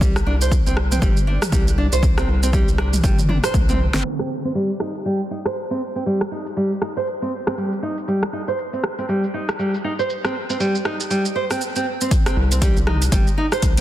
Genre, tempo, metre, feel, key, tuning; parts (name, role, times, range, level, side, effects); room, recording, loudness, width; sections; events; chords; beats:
afro house; 119 BPM; 4/4; swing 59% on 16ths; C minor; A4 = 439 Hz
nylon-string guitar; arpeggios; 0.0-13.8 s; G3 to C5; -22 LUFS; right 1 dB; sidechain pumping, low-pass filter, dub echo
round analog bass; bass; 0.0-4.0, 12.4-13.8 s; G1 to C2; -20 LUFS; equal; sidechain pumping
deep house drum kit; drums; 0.0-13.8 s; hi-hat, rim click, shaker, snare drum, toms; -26 LUFS; right 1 dB; overdrive
electronic kick drum; drums; 0.0-3.7, 12.1-13.7 s; -19 LUFS; equal; overdrive
light reverb; dense, heavily limited modern master, low-pass filter; -18 LUFS; side -13 dB against mid
0.0-4.0 A section; 4.0-12.1 B section; 12.1-13.8 C section
drum fill 3.3-4.0; band accent 3.9; filter sweep on nylon-string guitar 4.0-12.1; filter sweep 4.0-12.1; drop 12.1-13.8
0.0 Gsus4; 4.0 Cm
| 0.01 0.52 1.02 1.52 | 2.03 2.53 3.04 3.54 | 4.04 4.55 5.05 5.56 | 6.06 6.57 7.07 7.57 | 8.08 8.58 9.09 9.59 | 10.10 10.60 11.10 11.61 | 12.11 12.62 13.12 13.62